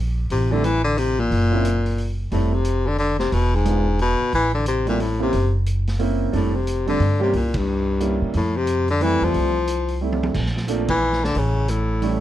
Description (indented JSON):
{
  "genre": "jazz, small-group swing and bop",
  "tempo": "179 BPM",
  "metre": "3/4",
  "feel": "swing 62% on 8ths",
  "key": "F major",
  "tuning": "A4 = 440 Hz",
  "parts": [
    { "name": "upright bass", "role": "bass", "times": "0.0-12.2 s", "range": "E1 to C3", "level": "-22 LUFS", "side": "equal", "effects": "none" },
    { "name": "warm baritone saxophone", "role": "melody", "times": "0.3-12.2 s", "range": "G2 to F3", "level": "-21 LUFS", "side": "left 3 dB", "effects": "none" },
    { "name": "vintage drum kit", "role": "drums", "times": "0.3-12.1 s", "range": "crash cymbal, hi-hat, kick drum, ride cymbal, snare drum, toms", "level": "-33 LUFS", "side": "right 1 dB", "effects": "none" },
    { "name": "warm baby grand piano", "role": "accompaniment", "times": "0.5-12.2 s", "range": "E3 to G4", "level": "-25 LUFS", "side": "right 4 dB", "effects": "none" }
  ],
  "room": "light reverb",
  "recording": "dark, warm production",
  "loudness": "-18 LUFS",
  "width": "side -13 dB against mid",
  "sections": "0.0-2.3 A section; 2.3-10.3 B section; 10.3-12.2 C section",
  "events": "band accent 7.5, 10.8; drum fill 10.0-10.3",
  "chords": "0.3 Am; 1.3 Gb; 2.3 Fmaj7; 3.3 E7b9; 4.3 Am; 5.3 Gb7#11; 6.3 F69; 7.3 C7b9; 8.3 Fmaj7; 10.3 Bbmaj9; 11.4 A7",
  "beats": "| 0.31 0.64 0.98 | 1.31 1.65 1.98 | 2.32 2.65 2.99 | 3.32 3.66 3.99 | 4.33 4.66 5.00 | 5.33 5.67 6.00 | 6.33 6.67 7.00 | 7.34 7.67 8.01 | 8.34 8.68 9.01 | 9.34 9.68 10.01 | 10.35 10.68 11.02 | 11.35 11.69 12.02"
}